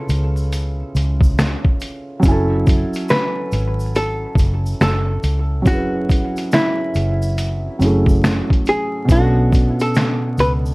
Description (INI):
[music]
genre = lo-fi hip hop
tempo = 70 BPM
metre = 4/4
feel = swing 64% on 16ths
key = unclear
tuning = A4 = 439 Hz
[part]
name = archtop guitar, miked and amplified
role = melody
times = 0.0-10.5 s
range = E4 to B4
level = -21 LUFS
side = equal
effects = low-pass filter, analog delay
[part]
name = felt-muted upright piano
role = accompaniment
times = 0.0-10.7 s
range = B2 to G#5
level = -22 LUFS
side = right 1 dB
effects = cassette tape, low-pass filter
[part]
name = vintage muted fingered electric bass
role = bass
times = 0.1-10.7 s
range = F#1 to C#2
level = -19 LUFS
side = equal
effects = none
[part]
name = lo-fi sampler-style drum kit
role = drums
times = 0.1-10.6 s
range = finger snaps, hi-hat, kick drum, snare drum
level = -17 LUFS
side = equal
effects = none
[part]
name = tube shaker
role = percussion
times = 0.1-10.7 s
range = none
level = -42 LUFS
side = left 1 dB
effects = none
[sound]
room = light reverb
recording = vinyl crackle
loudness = -15 LUFS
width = side -24 dB against mid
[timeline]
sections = 0.0-10.7 A section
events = none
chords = 0.0 C#7alt; 2.2 F#m7; 9.1 Bm9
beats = 0.52 1.38 | 2.24 3.09 3.95 4.81 | 5.66 6.52 7.38 8.24 | 9.09 9.95